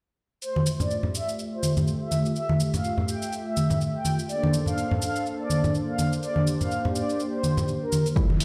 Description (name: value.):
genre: deep house.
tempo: 124 BPM.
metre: 4/4.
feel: swing 57% on 16ths.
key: F major.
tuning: A4 = 440 Hz.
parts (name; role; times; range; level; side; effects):
mellow horn-like synth lead; melody; 0.4-8.1 s; Bb4 to G5; -33 LUFS; equal; chorus, tape echo.
warm analog pad; sustained chords; 0.4-8.4 s; F3 to E5; -33 LUFS; equal; chorus, sidechain pumping.
electronic shaker and hi-hat; drums; 0.4-8.4 s; none; -38 LUFS; equal; none.
congas; percussion; 0.6-8.4 s; none; -28 LUFS; equal; none.
percussive organ stab; stabs; 8.2-8.3 s; F3 to E4; -31 LUFS; equal; chorus, sidechain pumping.
electronic kick drum; drums; 8.2-8.3 s; none; -24 LUFS; equal; none.
riser; sound effects; 8.2-8.4 s; none; -46 LUFS; equal; none.
room: moderate lush hall reverb, RT60 2.4 s.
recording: played on a big sound system in a bare room, large studio reverb.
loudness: -26 LUFS.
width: mono.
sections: 0.4-8.2 A section.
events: riser 8.2.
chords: 0.4 Fmaj9; 4.3 Bbmaj9.